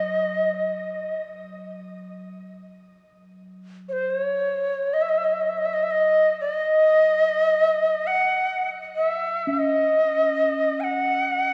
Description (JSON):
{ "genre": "world meditative, free-time meditation music", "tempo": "free time", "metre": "none", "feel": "none", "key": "unclear", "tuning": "A4 = 441 Hz", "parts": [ { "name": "breathy bright Native American-style cedar flute", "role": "melody", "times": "0.0-11.5 s", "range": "B#4 to G#5", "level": "-23 LUFS", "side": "equal", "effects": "shimmer reverb" }, { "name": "bronze singing bowl", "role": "texture", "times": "0.0-11.5 s", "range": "F#3 to C#4", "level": "-37 LUFS", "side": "equal", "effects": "none" } ], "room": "wet church reverb, RT60 3.0 s", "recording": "worn, warbling old tape, cassette tape, warbly pitch drift, studio ambience", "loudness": "-22 LUFS", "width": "mono", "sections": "0.0-11.5 A section", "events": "none", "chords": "none" }